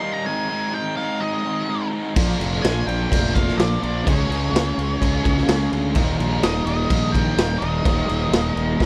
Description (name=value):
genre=classic rock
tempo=126 BPM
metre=4/4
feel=straight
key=Eb mixolydian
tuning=A4 = 444 Hz
part: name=octave-fuzz lead guitar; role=melody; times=0.0-8.9 s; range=Db5 to C6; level=-30 LUFS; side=equal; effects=distortion
part: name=overdriven electric guitar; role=riff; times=0.0-8.9 s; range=Eb2 to Ab4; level=-28 LUFS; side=equal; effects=spring reverb
part: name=distorted electric guitar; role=riff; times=2.2-8.9 s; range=Eb2 to Db4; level=-28 LUFS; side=equal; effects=distortion
part: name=fuzz fingered electric bass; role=bass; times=2.2-8.9 s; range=Eb1 to D2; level=-26 LUFS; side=equal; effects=overdrive
part: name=raw garage drum kit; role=drums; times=2.2-8.9 s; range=crash cymbal, kick drum, snare drum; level=-24 LUFS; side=equal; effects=none
room=little or no reverb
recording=none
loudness=-21 LUFS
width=mono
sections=0.0-8.9 A section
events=none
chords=0.3 Ab; 2.2 Bb; 4.1 Db; 6.0 Eb